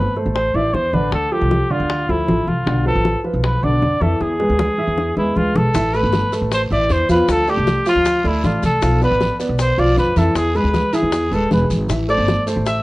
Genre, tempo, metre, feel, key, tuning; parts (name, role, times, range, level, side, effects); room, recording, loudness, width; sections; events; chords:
latin, Cuban son and guajira; 156 BPM; 4/4; straight; A minor; A4 = 440 Hz
warm trumpet; melody; 0.0-12.8 s; E4 to E5; -20 LUFS; equal; plate reverb
dark concert grand piano; arpeggios; 0.0-12.8 s; D3 to F5; -20 LUFS; equal
upright bass; bass; 0.0-12.8 s; D1 to F2; -20 LUFS; equal
bongos; percussion; 0.2-12.8 s; -26 LUFS; left 4 dB
congas; percussion; 0.2-12.8 s; -24 LUFS; equal
guiro; percussion; 5.7-12.8 s; -38 LUFS; right 3 dB
maracas; percussion; 5.7-12.8 s; -37 LUFS; left 4 dB
moderate studio ambience, RT60 0.5 s; worn, warbling old tape, cassette tape, warbly pitch drift; -15 LUFS; side -19 dB against mid
0.0-5.7 A section; 5.7-12.8 A section
drum fill 4.2-5.7
0.0 Am; 1.1 Dm; 2.7 Bdim; 4.2 E; 5.7 Asus2; 7.3 Dm; 8.8 Bdim; 10.4 E; 11.9 Am